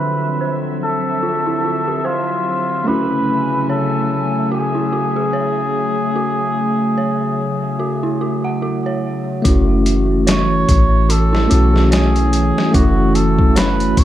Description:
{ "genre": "trip hop", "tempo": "73 BPM", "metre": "4/4", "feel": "swing 57% on 16ths", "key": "unclear", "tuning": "A4 = 441 Hz", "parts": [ { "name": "trumpet with cup mute", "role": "melody", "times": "0.0-14.0 s", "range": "F4 to C#5", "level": "-21 LUFS", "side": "equal", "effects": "tape echo" }, { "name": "bell-like tine electric piano", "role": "accompaniment", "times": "0.0-14.0 s", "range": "F3 to A4", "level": "-21 LUFS", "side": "equal", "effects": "fast stereo tremolo, harmonic tremolo" }, { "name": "warbly tape-like pad", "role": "sustained chords", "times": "0.0-14.0 s", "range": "C#3 to G#5", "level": "-22 LUFS", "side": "left 1 dB", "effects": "chorus, built-in reverb" }, { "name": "dark detuned synth bell", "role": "arpeggios", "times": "0.0-14.0 s", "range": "E4 to F#5", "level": "-25 LUFS", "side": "right 3 dB", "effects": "chorus, vintage 12-bit sampler grit, tape echo" }, { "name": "bowed-like drone", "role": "texture", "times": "0.0-9.5 s", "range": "F#3 to E5", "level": "-29 LUFS", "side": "equal", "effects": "built-in reverb" }, { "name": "trip hop sampler-style drum kit", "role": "drums", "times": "9.4-14.0 s", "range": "hi-hat, kick drum, snare drum", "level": "-17 LUFS", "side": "left 1 dB", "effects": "none" }, { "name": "soft 808-style bass", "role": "bass", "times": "9.5-14.0 s", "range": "F#1 to B1", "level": "-16 LUFS", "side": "equal", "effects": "none" } ], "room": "light reverb", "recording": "low-pass filter", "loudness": "-14 LUFS", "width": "side -12 dB against mid", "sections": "0.0-9.4 A section; 9.4-14.0 B section", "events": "filter sweep on synth bell 0.0-9.4", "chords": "0.0 Dm7; 2.9 Amaj7; 9.4 F#m7" }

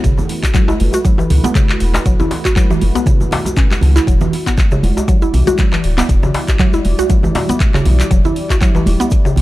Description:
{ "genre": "afro house", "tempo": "119 BPM", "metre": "4/4", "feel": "swing 56% on 16ths", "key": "unclear", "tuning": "A4 = 436 Hz", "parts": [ { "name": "dark analog pad", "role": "sustained chords", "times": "0.0-9.4 s", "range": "G3 to D5", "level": "-25 LUFS", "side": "left 1 dB", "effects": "chorus, sidechain pumping" }, { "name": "mallet-like synth pluck", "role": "arpeggios", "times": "0.0-9.4 s", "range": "C#3 to F#4", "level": "-18 LUFS", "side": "equal", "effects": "chorus, sidechain pumping, tape echo" }, { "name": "warm sub bass", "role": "bass", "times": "0.0-9.4 s", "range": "D1 to C#2", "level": "-13 LUFS", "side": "equal", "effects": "sidechain pumping" }, { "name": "afro-pop drum kit", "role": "drums", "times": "0.0-9.4 s", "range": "handclaps, hi-hat, toms", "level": "-24 LUFS", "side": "equal", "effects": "studio reverb" }, { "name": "electronic kick drum", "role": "drums", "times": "0.0-9.2 s", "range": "none", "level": "-13 LUFS", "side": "equal", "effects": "studio reverb" }, { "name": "tube shaker", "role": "percussion", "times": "0.0-9.3 s", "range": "none", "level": "-33 LUFS", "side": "left 2 dB", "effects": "none" }, { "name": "congas", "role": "percussion", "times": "0.2-9.4 s", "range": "none", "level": "-22 LUFS", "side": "right 3 dB", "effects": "none" }, { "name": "djembe", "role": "percussion", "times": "0.2-9.3 s", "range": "none", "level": "-22 LUFS", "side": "left 2 dB", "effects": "none" } ], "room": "digital ambience", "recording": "dry, gritty hardware recording", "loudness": "-11 LUFS", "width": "side -17 dB against mid", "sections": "0.0-9.4 A section", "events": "none", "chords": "0.0 F#m7; 4.1 Em9" }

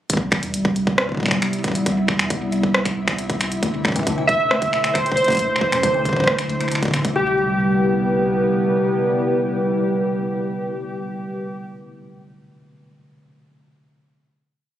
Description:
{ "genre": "IDM", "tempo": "136 BPM", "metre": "4/4", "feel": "straight", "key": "C lydian", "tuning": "A4 = 435 Hz", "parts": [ { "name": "warbly tape-like pad", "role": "sustained chords", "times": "0.1-11.4 s", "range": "C3 to B4", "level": "-22 LUFS", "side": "equal", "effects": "chorus, built-in reverb" }, { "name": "round analog bass", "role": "bass", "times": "0.1-8.4 s", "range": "C2 to F#2", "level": "-32 LUFS", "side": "right 1 dB", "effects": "none" }, { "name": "electronic kick drum", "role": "drums", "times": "0.1-7.1 s", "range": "none", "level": "-22 LUFS", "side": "equal", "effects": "overdrive" }, { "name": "glitchy drum kit", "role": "drums", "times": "0.1-7.1 s", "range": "finger snaps, hi-hat, rim click", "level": "-23 LUFS", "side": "equal", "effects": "overdrive, digital delay" }, { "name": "flickering grainy texture", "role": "texture", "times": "0.6-7.2 s", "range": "E4 to E5", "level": "-34 LUFS", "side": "left 1 dB", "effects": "built-in reverb" }, { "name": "kalimba", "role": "arpeggios", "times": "3.6-7.4 s", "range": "B2 to A3", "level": "-30 LUFS", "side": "left 2 dB", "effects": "digital delay" }, { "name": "warbly lo-fi synth keys", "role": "melody", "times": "4.3-11.7 s", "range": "G4 to E5", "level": "-21 LUFS", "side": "equal", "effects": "chorus, digital delay" } ], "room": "moderate lush hall reverb, RT60 2.2 s", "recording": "recorded on a phone in the room, club reverb, compression", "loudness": "-18 LUFS", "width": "side -11 dB against mid", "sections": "0.1-7.2 groove; 7.2-10.7 final chord", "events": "none", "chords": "0.1 Cmaj7; 3.6 D13; 7.2 Cmaj7" }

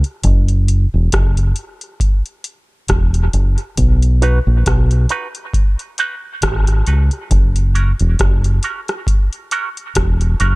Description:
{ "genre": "dub reggae", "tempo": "68 BPM", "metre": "4/4", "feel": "swing 56% on 16ths", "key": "B major", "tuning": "A4 = 440 Hz", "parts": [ { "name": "booming analog drum machine", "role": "drums", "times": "0.0-10.6 s", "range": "hi-hat, kick drum, rim click", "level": "-16 LUFS", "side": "equal", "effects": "none" }, { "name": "deep dub fingered electric bass", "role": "bass", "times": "0.2-10.6 s", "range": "E1 to C#2", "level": "-13 LUFS", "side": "equal", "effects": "none" }, { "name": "electric guitar with an envelope filter", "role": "accompaniment", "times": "4.2-10.6 s", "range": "C#4 to B4", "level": "-22 LUFS", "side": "right 4 dB", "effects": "high-pass filter, dub echo" } ], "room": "little or no reverb", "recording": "none", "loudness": "-13 LUFS", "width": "side -23 dB against mid", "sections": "0.0-10.6 A section", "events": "break 0.0-3.8", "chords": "0.2 Esus2; 3.8 B; 7.3 F#" }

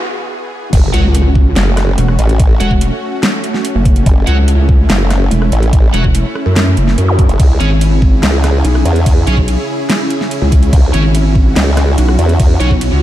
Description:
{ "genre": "heavy wobble dubstep", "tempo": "144 BPM", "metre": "4/4", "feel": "half-time", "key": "F# minor", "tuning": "A4 = 441 Hz", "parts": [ { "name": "supersaw pad", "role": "sustained chords", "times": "0.0-13.0 s", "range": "E2 to G#4", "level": "-19 LUFS", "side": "equal", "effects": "sidechain pumping" }, { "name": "formant-sweep wobble bass", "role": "bass", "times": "0.7-12.6 s", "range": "F#1 to E2", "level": "-12 LUFS", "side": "equal", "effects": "chorus, overdrive" }, { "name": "dubstep drum kit", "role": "drums", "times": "0.7-12.9 s", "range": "crash cymbal, hi-hat, rim click, snare drum", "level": "-19 LUFS", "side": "equal", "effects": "none" }, { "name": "electronic kick drum", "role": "drums", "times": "0.7-12.8 s", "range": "none", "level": "-10 LUFS", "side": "equal", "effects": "none" }, { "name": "impact and zap", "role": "sound effects", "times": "0.7-2.4, 7.1-7.2 s", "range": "none", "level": "-20 LUFS", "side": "equal", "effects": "none" }, { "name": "high-gain distorted guitar", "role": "stabs", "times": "0.9-12.7 s", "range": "C#4 to F#5", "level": "-24 LUFS", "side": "right 2 dB", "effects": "distortion, digital delay" }, { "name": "pulsing pluck wobble bass", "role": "bass", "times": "0.9-13.0 s", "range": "E1 to F#2", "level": "-11 LUFS", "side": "equal", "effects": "distortion, chorus, overdrive" } ], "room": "digital ambience", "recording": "dark, warm production, high-pass filter", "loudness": "-9 LUFS", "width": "side -13 dB against mid", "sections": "0.7-13.0 A section", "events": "break 0.0-0.7; drop 0.7-13.0; impact 0.7-2.4", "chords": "0.0 E; 0.7 F#m; 7.4 C#m" }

